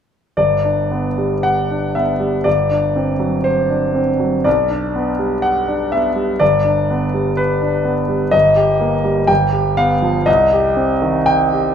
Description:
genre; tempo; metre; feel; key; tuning
classical, romantic character piece for solo piano; 56-64 BPM; 2/4; rubato; G major; A4 = 445 Hz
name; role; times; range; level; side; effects
clear concert grand piano; solo; 0.4-11.7 s; G1 to G5; -14 LUFS; equal; none
room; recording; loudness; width
moderate recital hall reverb, RT60 1.8 s; minimal, uncompressed stereo recording; -14 LUFS; side -8 dB against mid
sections
0.4-11.7 A section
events
none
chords
0.4 G; 2.5 D7/G; 4.5 G/B; 6.4 G; 8.3 Eb/G; 9.3 G7; 10.3 Cm

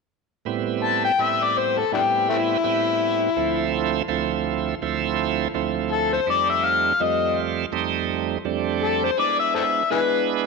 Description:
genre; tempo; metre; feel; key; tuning
blues; 83 BPM; 4/4; swing 55% on 16ths; A minor; A4 = 440 Hz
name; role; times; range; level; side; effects
bright tonewheel organ; accompaniment; 0.5-10.5 s; D2 to F4; -24 LUFS; right 10 dB; slow rotary speaker, overdrive
overdriven harmonica; melody; 0.8-10.3 s; A3 to A5; -21 LUFS; left 7 dB; none
room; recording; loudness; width
wet echo chamber reverb, RT60 1.8 s, small room ambience; 1960s-style stereo with parts hard left and right; -20 LUFS; side -3 dB against mid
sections
0.5-10.5 A section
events
none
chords
0.5 Am7; 3.4 Dm7; 6.3 F7; 9.2 E7

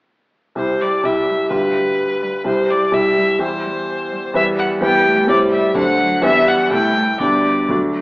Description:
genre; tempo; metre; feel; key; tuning
quick classical-period movement for piano quartet; 127 BPM; 2/4; straight; C major, G major from 4.3 s; A4 = 439 Hz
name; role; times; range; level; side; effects
rich violin; melody; 0.6-7.7 s; B4 to G5; -18 LUFS; left 1 dB; none
clear baby grand piano; accompaniment; 0.6-8.0 s; C2 to C5; -17 LUFS; equal; none
warm cello; second line; 0.8-8.0 s; F#3 to B3; -27 LUFS; right 1 dB; none
room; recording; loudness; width
wet recital hall reverb, RT60 1.7 s; AM radio sound; -14 LUFS; side -24 dB against mid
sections
0.6-8.0 A section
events
none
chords
0.6 C; 1.5 G7/D; 2.5 C; 3.4 C/E; 4.3 Em; 5.3 Am7; 5.8 D7; 6.2 Em; 6.7 Am7/C; 7.2 G/D

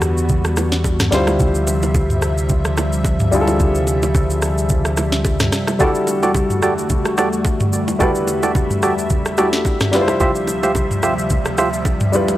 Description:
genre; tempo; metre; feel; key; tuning
amapiano; 109 BPM; 4/4; swing 55% on 16ths; unclear; A4 = 439 Hz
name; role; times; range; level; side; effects
warm concert grand piano; accompaniment; 0.0-12.4 s; G3 to C5; -21 LUFS; left 1 dB; none
lush unison pad; sustained chords; 0.0-12.4 s; D2 to E5; -23 LUFS; left 1 dB; chorus, sidechain pumping
fingered electric bass; bass; 0.0-5.5 s; D2 to E2; -20 LUFS; equal; none
smooth R&B drum kit; drums; 0.0-12.4 s; kick drum, rim click, shaker, snare drum, toms; -20 LUFS; equal; none
congas and bongos; percussion; 0.3-12.4 s; none; -25 LUFS; right 2 dB; none
percussive organ stab; stabs; 5.8-11.7 s; F4 to E5; -20 LUFS; right 2 dB; chorus, tape echo
room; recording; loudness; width
little or no reverb; dry, gritty hardware recording, transformer saturation; -15 LUFS; side -14 dB against mid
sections
0.0-12.4 A section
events
none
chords
0.0 Em11; 1.1 Dm11; 5.8 Em11; 9.9 Dm11

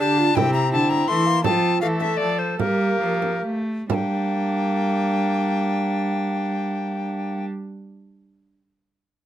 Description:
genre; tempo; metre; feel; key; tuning
classical, renaissance-style consort dance; 129-167 BPM; 3/4; straight; G dorian; A4 = 440 Hz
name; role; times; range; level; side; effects
bright alto recorder; melody; 0.0-7.5 s; Bb4 to C6; -24 LUFS; left 5 dB; none
warm viola; second line; 0.0-7.4 s; D4 to A4; -27 LUFS; right 4 dB; none
warm bassoon; accompaniment; 0.0-7.5 s; A3 to D4; -28 LUFS; left 1 dB; none
dark cello; bass; 0.0-7.4 s; C3 to A3; -24 LUFS; right 1 dB; none
frame drum; percussion; 0.4-4.1 s; none; -25 LUFS; right 5 dB; none
room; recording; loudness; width
light reverb; close, detailed microphones; -20 LUFS; side -11 dB against mid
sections
0.0-3.9 A section; 3.9-6.7 B section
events
slowing down 0.9-3.9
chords
0.4 C; 1.4 F; 2.6 Gm

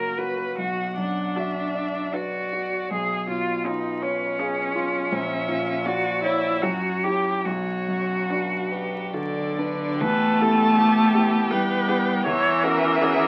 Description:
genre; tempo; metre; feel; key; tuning
classical, slow romantic movement for piano quintet; 66-83 BPM; 3/4; rubato; B minor, E minor from 10.0 s; A4 = 440 Hz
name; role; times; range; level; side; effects
warm violin; melody; 0.0-13.3 s; B4 to A5; -32 LUFS; equal; none
dark violin; second line; 0.0-13.3 s; E#4 to B4; -36 LUFS; equal; none
rich cello; second line; 0.0-13.3 s; D3 to B4; -27 LUFS; equal; none
clear concert grand piano; accompaniment; 0.0-13.3 s; A#1 to D5; -30 LUFS; equal; none
rich viola; accompaniment; 0.0-13.3 s; A#3 to C#5; -30 LUFS; equal; none
room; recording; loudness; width
moderate studio reverb, RT60 0.8 s; very old 78 rpm record, vinyl crackle; -24 LUFS; mono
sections
0.0-10.0 A section; 10.0-13.3 B section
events
none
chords
0.0 F#; 0.6 Bm; 2.9 C#7/B; 5.1 F#7/A#; 6.6 F#5; 7.5 Bm; 10.0 Em; 12.3 F#7/E

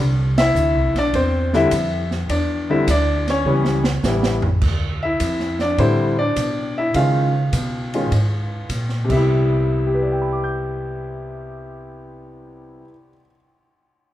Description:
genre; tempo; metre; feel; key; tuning
jazz piano trio; 103 BPM; 4/4; swing 69% on 8ths; C major; A4 = 440 Hz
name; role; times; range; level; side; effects
upright bass; bass; 0.0-12.8 s; A1 to Db3; -21 LUFS; equal; none
warm concert grand piano; melody; 0.4-13.4 s; C3 to G6; -20 LUFS; left 1 dB; none
open jazz drum kit; drums; 0.4-9.2 s; crash cymbal, hi-hat, kick drum, ride cymbal, snare drum, toms; -26 LUFS; right 1 dB; none
room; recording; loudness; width
moderate recital hall reverb, RT60 1.8 s; recorded in a church or concert hall; -17 LUFS; side -13 dB against mid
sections
0.0-4.6 A section; 4.6-9.3 B section; 9.3-11.6 C section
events
band accent 0.3; drum fill 3.5-4.6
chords
0.0 C; 2.3 Dsus2; 3.5 A7; 4.6 Dm7; 6.9 Db7; 9.0 Cmaj7

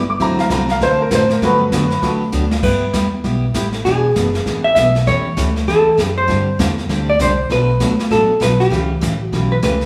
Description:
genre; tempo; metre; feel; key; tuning
country, western swing; 197 BPM; 4/4; swing 61% on 8ths; G major; A4 = 440 Hz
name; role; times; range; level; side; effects
upright bass; bass; 0.0-9.9 s; E1 to A2; -22 LUFS; equal; none
clear upright piano; accompaniment; 0.1-2.2 s; F#3 to D6; -18 LUFS; equal; none
picked steel-string acoustic guitar; accompaniment; 0.2-9.7 s; B2 to A4; -23 LUFS; equal; none
jazz brush drum kit; drums; 0.2-9.9 s; brushed snare drum, crash cymbal, hi-hat, kick drum, snare drum; -26 LUFS; equal; none
vintage hollow-body jazz guitar; melody; 2.6-9.9 s; G4 to E5; -19 LUFS; equal; none
room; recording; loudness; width
wet large studio reverb, RT60 1.2 s; band playing live in one room, studio reverb; -16 LUFS; mono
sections
0.0-2.6 A section; 2.6-9.9 B section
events
upright piano solo 0.0-2.6; drum fill 2.3-2.6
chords
0.2 D7; 1.4 Gmaj9; 2.6 G69; 3.9 E7; 5.1 A7; 6.3 D9sus4; 7.5 Bm7; 8.7 A7

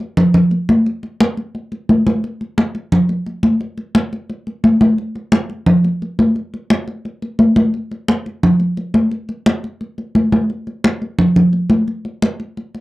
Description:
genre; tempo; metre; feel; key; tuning
jazz; 174 BPM; 4/4; straight; none; none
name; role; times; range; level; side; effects
congas; percussion; 0.0-12.8 s; none; -13 LUFS; equal; none
room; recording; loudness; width
little or no reverb; dry, close 1970s-style studio recording; -14 LUFS; side -19 dB against mid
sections
0.0-7.7 A section; 7.7-12.8 B section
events
none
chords
none

